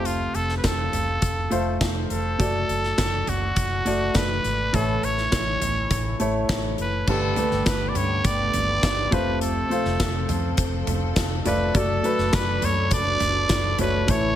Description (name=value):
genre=piano-driven pop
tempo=103 BPM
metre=4/4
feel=straight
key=unclear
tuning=A4 = 439 Hz
part: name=growling trumpet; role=melody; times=0.0-14.4 s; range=F4 to D5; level=-26 LUFS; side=right 1 dB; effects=none
part: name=warm upright piano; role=accompaniment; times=0.0-14.4 s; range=G2 to D5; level=-27 LUFS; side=left 1 dB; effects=none
part: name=vintage muted fingered electric bass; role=bass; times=0.0-14.3 s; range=F1 to G2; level=-28 LUFS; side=equal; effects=none
part: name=huge arena drum kit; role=drums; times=0.1-14.2 s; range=crash cymbal, hi-hat, kick drum, snare drum, toms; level=-26 LUFS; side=equal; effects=none
part: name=warm studio string section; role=sustained chords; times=7.1-14.4 s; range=F3 to A4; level=-34 LUFS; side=left 1 dB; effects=none
room=light reverb, small room ambience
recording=none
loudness=-20 LUFS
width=side -11 dB against mid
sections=0.0-7.1 A section; 7.1-14.4 B section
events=none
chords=0.0 F; 2.4 D/F#; 4.7 A; 7.1 Gadd9; 9.1 F; 11.8 D/F#